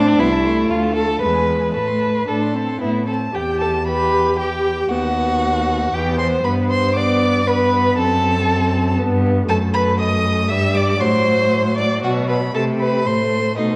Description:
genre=quick classical-period movement for string quartet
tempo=117 BPM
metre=3/4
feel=rubato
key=A minor, E minor from 3.3 s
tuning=A4 = 440 Hz
part: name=rich violin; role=melody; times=0.0-13.8 s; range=D#5 to E6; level=-26 LUFS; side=equal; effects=none
part: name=rich violin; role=second line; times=0.0-13.8 s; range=D4 to E5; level=-23 LUFS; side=equal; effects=none
part: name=warm viola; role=accompaniment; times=0.0-13.8 s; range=F#3 to G4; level=-24 LUFS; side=equal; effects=none
part: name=rich cello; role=bass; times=0.0-13.8 s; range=C2 to C3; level=-24 LUFS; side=equal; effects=transformer saturation
room=wet concert hall reverb, RT60 1.9 s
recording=worn, warbling old tape, cassette tape, vinyl crackle, warbly pitch drift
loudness=-18 LUFS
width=mono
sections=0.0-3.3 A section; 3.3-13.8 B section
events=none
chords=0.2 Am/C; 0.7 Dm; 1.2 E; 1.7 Am; 3.3 Em; 4.9 B/D#; 5.9 Em; 6.4 G; 8.0 F#dim; 9.0 G; 9.5 B7/F#; 10.5 Em/G; 11.0 F#dim/A; 12.0 B5; 12.5 Am/C

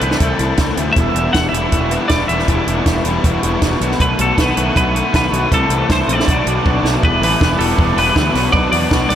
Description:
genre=indie rock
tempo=158 BPM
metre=4/4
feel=straight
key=E minor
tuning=A4 = 443 Hz
part: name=twelve-string electric guitar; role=melody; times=0.0-9.2 s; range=A4 to F#5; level=-19 LUFS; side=equal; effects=wide subtle chorus, diffuse ambient delay
part: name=overdriven electric guitar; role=riff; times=0.0-9.2 s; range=E2 to F#4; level=-19 LUFS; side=left 5 dB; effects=analog chorus
part: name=fuzz picked electric bass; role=bass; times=0.0-9.2 s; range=E1 to E2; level=-20 LUFS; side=equal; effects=overdrive
part: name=compact cocktail drum kit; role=drums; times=0.0-9.2 s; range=hi-hat, kick drum, snare drum, toms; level=-18 LUFS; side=right 1 dB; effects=none
part: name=overdriven electric guitar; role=riff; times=1.0-9.2 s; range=E2 to G4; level=-23 LUFS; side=right 8 dB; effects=lush chorus
room=moderate huge ambient reverb, RT60 4.8 s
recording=dreamy mix soaked in reverb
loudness=-13 LUFS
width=side -10 dB against mid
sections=0.0-7.0 A section; 7.0-9.2 B section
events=drum fill 6.7-7.0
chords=0.0 Am/C; 1.0 Emadd9; 3.8 B5; 5.5 Am/C; 6.3 Bm7; 7.0 Em; 8.4 Bm

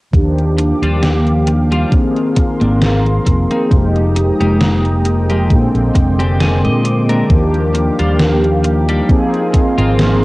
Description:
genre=vaporwave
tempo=67 BPM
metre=4/4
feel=swing 54% on 16ths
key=unclear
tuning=A4 = 442 Hz
part: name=mellow synth brass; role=accompaniment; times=0.1-10.2 s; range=D3 to Ab4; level=-16 LUFS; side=equal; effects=lush chorus, cassette tape, analog delay
part: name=lush unison pad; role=sustained chords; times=0.5-10.2 s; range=Ab3 to Eb6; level=-24 LUFS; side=right 1 dB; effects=chorus, phaser, vintage 12-bit sampler grit
part: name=fretless electric bass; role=bass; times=0.1-10.2 s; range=F1 to Bb2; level=-15 LUFS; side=equal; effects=none
part: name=electronic kick drum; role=drums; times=0.1-9.7 s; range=none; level=-12 LUFS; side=equal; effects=overdrive, cassette tape
part: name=gated 80s digital drum machine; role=drums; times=0.1-10.2 s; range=hi-hat, snare drum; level=-19 LUFS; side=equal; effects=gated reverb, gated reverb snare, overdrive, cassette tape
part: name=clean electric guitar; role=riff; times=0.6-10.0 s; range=G3 to Ab5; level=-20 LUFS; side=left 1 dB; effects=analog chorus, low-pass filter, analog delay
room=light reverb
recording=home recording on cassette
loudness=-11 LUFS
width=side -20 dB against mid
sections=0.1-10.2 A section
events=clean electric guitar fill 6.0-7.3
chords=0.1 Ebmaj9; 1.9 Ab69; 3.7 Fm11; 5.5 Bb13; 7.3 Ebmaj9; 9.1 Ab69

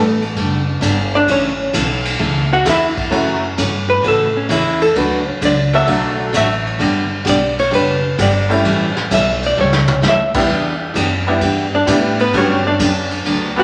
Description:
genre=country, western swing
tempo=130 BPM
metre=4/4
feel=swing 69% on 8ths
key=unclear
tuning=A4 = 440 Hz
part: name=archtop guitar, miked and amplified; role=second line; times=0.0-13.6 s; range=A3 to F#5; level=-19 LUFS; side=equal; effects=none
part: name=picked steel-string acoustic guitar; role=accompaniment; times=0.0-13.5 s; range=C#3 to A4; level=-22 LUFS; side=equal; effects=none
part: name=upright bass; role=bass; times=0.0-13.6 s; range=F#1 to A2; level=-23 LUFS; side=equal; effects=none
part: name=vintage brush drum kit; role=drums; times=0.2-13.4 s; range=crash cymbal, hi-hat, kick drum, ride cymbal, snare drum, toms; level=-24 LUFS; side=equal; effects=none
part: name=tack piano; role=accompaniment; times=3.1-13.6 s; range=F#3 to A4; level=-21 LUFS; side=equal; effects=none
room=wet large studio reverb, RT60 1.4 s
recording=none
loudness=-16 LUFS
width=mono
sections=0.0-13.6 A section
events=hollow-body jazz guitar solo 0.0-13.6; drum fill 9.6-10.0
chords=0.0 Gadd9; 1.3 A; 3.1 F#m7; 5.0 D; 6.8 G; 8.6 A7; 10.5 Em7; 12.3 Gmaj7

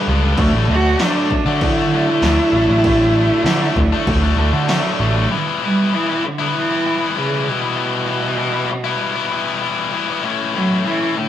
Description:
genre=quiet-loud alternative rock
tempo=98 BPM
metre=4/4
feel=straight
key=E dorian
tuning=A4 = 442 Hz
part: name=dark cello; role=melody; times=0.0-11.3 s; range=B2 to F#4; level=-19 LUFS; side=right 1 dB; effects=none
part: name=mellow tonewheel organ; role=sustained chords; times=0.0-5.3 s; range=F#4 to A5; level=-28 LUFS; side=right 4 dB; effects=slow rotary speaker
part: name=scooped high-gain guitar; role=riff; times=0.0-11.3 s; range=G2 to E4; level=-20 LUFS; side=left 5 dB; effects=distortion
part: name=thick fuzz guitar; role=riff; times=0.0-5.3 s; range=G2 to D4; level=-26 LUFS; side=right 6 dB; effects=distortion
part: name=overdriven picked electric bass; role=bass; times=0.1-5.2 s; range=A1 to D3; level=-18 LUFS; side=equal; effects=none
part: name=punchy analog drum machine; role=drums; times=0.4-4.8 s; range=crash cymbal, kick drum, snare drum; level=-22 LUFS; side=equal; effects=none
room=moderate stone room reverb, RT60 1.2 s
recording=rough rehearsal-room recording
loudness=-15 LUFS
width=side -11 dB against mid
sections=0.0-5.3 A section; 5.3-11.3 A section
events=kick and snare drop out 5.0-5.3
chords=0.4 Dadd9; 5.3 Em; 10.2 A

